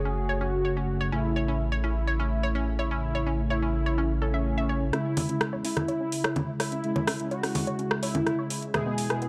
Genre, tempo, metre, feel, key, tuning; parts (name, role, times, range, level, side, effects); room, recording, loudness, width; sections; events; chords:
melodic techno; 126 BPM; 4/4; straight; C# minor; A4 = 440 Hz
unison lead; melody; 0.0-9.3 s; C#4 to G#4; -34 LUFS; equal; subtle chorus, cassette tape, tape echo
analog synth brass; stabs; 0.0-9.3 s; B2 to F#4; -34 LUFS; equal; chorus, tape echo
dark detuned saw bass; bass; 0.0-9.2 s; E1 to E2; -33 LUFS; equal; high-pass filter
analog pluck; arpeggios; 0.1-9.3 s; B3 to E5; -37 LUFS; equal; chorus, tape echo
deep house drum kit; drums; 4.9-9.3 s; congas, hi-hat, rim click; -32 LUFS; equal; overdrive
light reverb; dark, warm production; -28 LUFS; mono
0.0-4.9 A section; 4.9-9.3 B section
filter sweep on analog polysynth 0.0-4.9, 4.9-9.3; build-up 4.9-9.3
0.0 F#m; 1.1 A; 4.9 C#m; 8.7 E